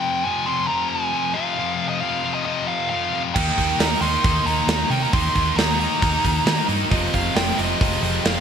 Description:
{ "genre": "hard rock", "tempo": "135 BPM", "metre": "4/4", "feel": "straight", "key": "unclear", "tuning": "A4 = 440 Hz", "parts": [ { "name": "nasal lead guitar with a parked wah", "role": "melody", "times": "0.0-8.4 s", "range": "Eb5 to C6", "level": "-23 LUFS", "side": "right 2 dB", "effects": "overdrive, ping-pong delay" }, { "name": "scooped high-gain guitar", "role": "riff", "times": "0.0-8.4 s", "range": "F2 to Eb4", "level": "-25 LUFS", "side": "left 10 dB", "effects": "distortion" }, { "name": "heavy high-gain guitar", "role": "riff", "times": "3.3-8.4 s", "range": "Eb3 to G4", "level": "-29 LUFS", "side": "right 2 dB", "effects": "none" }, { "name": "tight distorted guitar", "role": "riff", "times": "3.4-8.4 s", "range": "F2 to Eb4", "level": "-27 LUFS", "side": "right 13 dB", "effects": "distortion" }, { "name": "hollow-body short-scale fingered electric bass", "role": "bass", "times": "3.4-8.4 s", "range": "F1 to Eb3", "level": "-25 LUFS", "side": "right 1 dB", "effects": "none" }, { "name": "big rock drum kit", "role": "drums", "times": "3.4-8.4 s", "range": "crash cymbal, hi-hat, kick drum, snare drum", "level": "-23 LUFS", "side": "right 1 dB", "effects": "gated reverb" } ], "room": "moderate lush hall reverb, RT60 1.9 s, small room ambience", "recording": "bright 1980s-style digital production", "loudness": "-18 LUFS", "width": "side -7 dB against mid", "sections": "0.0-8.4 A section", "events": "none", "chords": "0.0 Fm; 3.4 Eb; 6.9 Fm" }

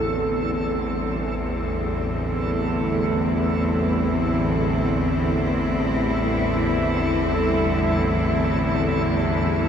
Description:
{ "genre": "dark ambient drone", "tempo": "free time", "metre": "none", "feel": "none", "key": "A minor", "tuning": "A4 = 440 Hz", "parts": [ { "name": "warm chamber cello section", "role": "sustained chords", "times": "0.0-9.7 s", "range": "A2 to E4", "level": "-24 LUFS", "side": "equal", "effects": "none" }, { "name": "bowed-like drone", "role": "drone", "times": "0.0-9.7 s", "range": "A1 to E2", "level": "-23 LUFS", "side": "equal", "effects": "built-in reverb" }, { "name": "backwards swelling texture", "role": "texture", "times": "0.0-9.7 s", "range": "A4", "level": "-29 LUFS", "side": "right 2 dB", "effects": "built-in reverb" } ], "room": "wet huge ambient reverb, RT60 7.6 s", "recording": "none", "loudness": "-20 LUFS", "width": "side -8 dB against mid", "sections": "0.0-9.7 A section", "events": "none", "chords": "0.0 Am" }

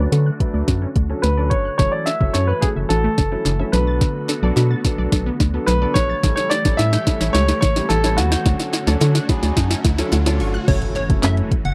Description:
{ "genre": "dance-pop", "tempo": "108 BPM", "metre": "4/4", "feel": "straight", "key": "F# minor", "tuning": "A4 = 436 Hz", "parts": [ { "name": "clear baby grand piano", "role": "melody", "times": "0.0-10.4 s", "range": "F#4 to E5", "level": "-25 LUFS", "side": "equal", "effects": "low-pass filter, tape echo" }, { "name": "warm concert grand piano", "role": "accompaniment", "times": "0.0-11.5 s", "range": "F#3 to B5", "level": "-30 LUFS", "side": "equal", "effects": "sidechain pumping, low-pass filter" }, { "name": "filtered supersaw swell", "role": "sustained chords", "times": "0.0-11.7 s", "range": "D3 to C#5", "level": "-33 LUFS", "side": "equal", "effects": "none" }, { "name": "unison pluck", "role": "arpeggios", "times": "0.0-10.6 s", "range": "C#3 to A6", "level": "-34 LUFS", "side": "equal", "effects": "sidechain pumping, low-pass filter, tape echo" }, { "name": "organ-like FM bass", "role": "bass", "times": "0.0-11.7 s", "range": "F#1 to D3", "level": "-21 LUFS", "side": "equal", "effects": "sidechain pumping" }, { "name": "smooth R&B drum kit", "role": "drums", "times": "0.1-11.7 s", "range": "crash cymbal, handclaps, hi-hat, kick drum, snare drum", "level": "-22 LUFS", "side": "equal", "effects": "none" }, { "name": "riser and impact", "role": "sound effects", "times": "4.3-11.7 s", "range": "none", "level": "-35 LUFS", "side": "equal", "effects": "none" }, { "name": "group handclap", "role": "percussion", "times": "2.1-11.4 s", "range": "none", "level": "-38 LUFS", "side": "equal", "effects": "none" }, { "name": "plucky unison lead", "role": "melody", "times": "10.7-11.7 s", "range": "C#5 to F#5", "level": "-29 LUFS", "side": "equal", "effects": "sidechain pumping, tape echo" } ], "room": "little or no reverb", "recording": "dry, close 1970s-style studio recording", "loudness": "-18 LUFS", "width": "mono", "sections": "0.0-10.7 A section; 10.7-11.7 B section", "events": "build-up 0.0-10.7; drum fill 0.0-10.7; filter sweep 0.0-10.7; grand piano fill 9.0-10.7; drop 10.7-11.7; impact 10.7-11.7", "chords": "0.0 Dmaj7; 1.8 F#m7; 3.7 Bm7; 6.2 A7; 8.5 Dmaj7; 10.7 F#m7" }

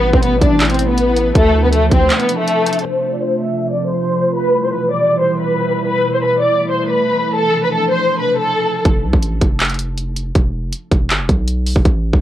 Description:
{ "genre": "hip hop, trap", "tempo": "160 BPM", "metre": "4/4", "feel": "half-time", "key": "unclear", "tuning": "A4 = 440 Hz", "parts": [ { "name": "warm studio violin section", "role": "melody", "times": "0.0-8.8 s", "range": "A3 to E6", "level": "-15 LUFS", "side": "left 1 dB", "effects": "low-pass filter, cassette tape, analog delay" }, { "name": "glassy FM pad", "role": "sustained chords", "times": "0.0-8.8 s", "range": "B2 to F4", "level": "-22 LUFS", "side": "equal", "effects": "ensemble chorus, built-in reverb, tremolo, low-pass filter, cassette tape" }, { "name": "long sustained 808-style bass", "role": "bass", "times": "0.0-2.1, 8.9-12.2 s", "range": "E1 to D2", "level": "-18 LUFS", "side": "equal", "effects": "none" }, { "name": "trap drum kit", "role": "drums", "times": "0.1-2.8, 8.9-12.2 s", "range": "handclaps, hi-hat, kick drum", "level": "-15 LUFS", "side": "equal", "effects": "cassette tape" } ], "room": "little or no reverb", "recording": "home recording on cassette", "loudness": "-13 LUFS", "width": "side -12 dB against mid", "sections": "0.0-2.9 A section; 2.9-8.9 B section; 8.9-12.2 C section", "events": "break 2.1-2.9; filter sweep 2.9-8.9", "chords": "0.0 Asus2; 1.4 Dm7; 2.9 F; 4.4 Em; 5.9 Asus2; 7.4 Dm7; 8.9 F; 10.4 E5" }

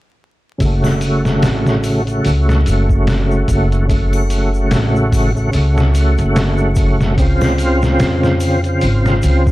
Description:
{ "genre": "trip hop", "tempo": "73 BPM", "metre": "4/4", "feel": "swing 57% on 16ths", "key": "unclear", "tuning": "A4 = 439 Hz", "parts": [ { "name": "overdriven tonewheel organ", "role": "accompaniment", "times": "0.6-9.5 s", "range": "C#3 to F#4", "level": "-17 LUFS", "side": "equal", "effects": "chorus vibrato, slow rotary speaker, tremolo, low-pass filter" }, { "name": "upright bass", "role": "bass", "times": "0.6-9.5 s", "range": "F#1 to E#2", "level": "-16 LUFS", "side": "equal", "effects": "none" }, { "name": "trip hop sampler-style drum kit", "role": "drums", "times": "0.6-9.5 s", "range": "hi-hat, kick drum, snare drum", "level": "-18 LUFS", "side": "equal", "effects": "none" }, { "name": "egg shaker and triangle", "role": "percussion", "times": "0.6-9.5 s", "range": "none", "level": "-37 LUFS", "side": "left 2 dB", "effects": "none" } ], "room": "light reverb, digital ambience", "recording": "dark, warm production, vinyl crackle", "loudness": "-12 LUFS", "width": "side -17 dB against mid", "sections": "0.6-9.5 A section", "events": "filter sweep on tonewheel organ 0.6-9.5", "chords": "0.6 F#m; 7.2 C#maj7" }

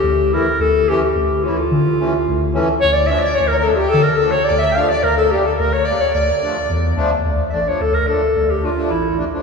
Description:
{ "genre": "klezmer", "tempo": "108 BPM", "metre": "4/4", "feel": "straight", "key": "D harmonic minor", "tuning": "A4 = 440 Hz", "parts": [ { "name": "warm clarinet", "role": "melody", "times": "0.0-9.2 s", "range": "E4 to G5", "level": "-17 LUFS", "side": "equal", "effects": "none" }, { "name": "saturated sub bass", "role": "bass", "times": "0.0-9.2 s", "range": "A1 to D3", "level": "-21 LUFS", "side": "left 2 dB", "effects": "none" }, { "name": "accordion", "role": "accompaniment", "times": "0.3-9.4 s", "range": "E3 to E4", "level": "-22 LUFS", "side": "left 1 dB", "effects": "none" }, { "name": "warm violin", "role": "second line", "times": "2.8-6.9 s", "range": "G4 to F5", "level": "-24 LUFS", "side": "left 5 dB", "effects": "none" } ], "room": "wet cathedral reverb, RT60 5.8 s", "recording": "recorded in a church or concert hall, studio ambience", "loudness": "-14 LUFS", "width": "side -4 dB against mid", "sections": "0.0-7.3 A section; 7.3-9.4 B section", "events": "clarinet solo 7.3-9.4", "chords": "0.0 A/D; 2.8 Dm; 5.0 Gm/D; 6.2 Dm" }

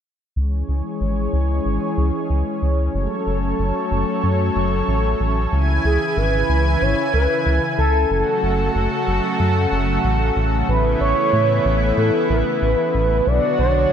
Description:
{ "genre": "synthwave", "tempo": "93 BPM", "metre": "4/4", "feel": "straight", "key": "unclear", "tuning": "A4 = 440 Hz", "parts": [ { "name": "lush unison pad", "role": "sustained chords", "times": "0.4-13.9 s", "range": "B2 to G#5", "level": "-21 LUFS", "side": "equal", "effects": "chorus" }, { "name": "round analog bass", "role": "bass", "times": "0.4-13.9 s", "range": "F#1 to A2", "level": "-20 LUFS", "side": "equal", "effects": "none" }, { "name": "expressive synth lead", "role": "melody", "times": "5.8-13.9 s", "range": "G#4 to D5", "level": "-20 LUFS", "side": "equal", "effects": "lush chorus, ping-pong delay" } ], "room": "moderate lush hall reverb, RT60 2.4 s", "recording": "bright 1980s-style digital production", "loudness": "-17 LUFS", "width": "side -8 dB against mid", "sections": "0.4-5.5 A section; 5.5-13.9 B section", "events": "filter sweep on analog synth pad 0.4-5.5", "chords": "0.4 C#m; 2.9 F#m; 5.5 C#m; 8.1 F#m; 10.7 Aadd9; 13.3 Bm" }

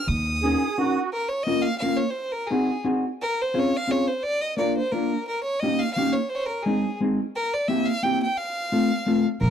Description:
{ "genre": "musette waltz", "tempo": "174 BPM", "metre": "3/4", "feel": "swing 54% on 8ths", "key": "Bb minor", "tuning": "A4 = 438 Hz", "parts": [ { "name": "bright violin", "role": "melody", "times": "0.0-9.5 s", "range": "Ab4 to Eb6", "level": "-26 LUFS", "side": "right 1 dB", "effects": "none" }, { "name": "upright bass", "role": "bass", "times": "0.1-0.5, 9.4-9.5 s", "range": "Bb1 to Eb2", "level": "-23 LUFS", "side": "right 1 dB", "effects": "none" }, { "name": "musette accordion", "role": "second line", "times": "0.4-1.1 s", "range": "Gb4 to Ab4", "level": "-28 LUFS", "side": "right 6 dB", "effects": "none" }, { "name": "hollow-body jazz guitar", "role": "accompaniment", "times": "0.4-9.3 s", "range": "Ab3 to Bb4", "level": "-23 LUFS", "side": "left 1 dB", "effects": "none" } ], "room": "small room ambience", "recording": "dry, close 1970s-style studio recording", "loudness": "-22 LUFS", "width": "side -8 dB against mid", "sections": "0.0-1.1 A section; 1.1-9.5 B section", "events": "none", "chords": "0.1 Ebm7; 1.1 Bbm; 2.2 Ab7; 3.2 Dbmaj7; 4.2 Bb; 5.3 Eb7; 6.3 Ab; 7.3 C7; 8.4 F" }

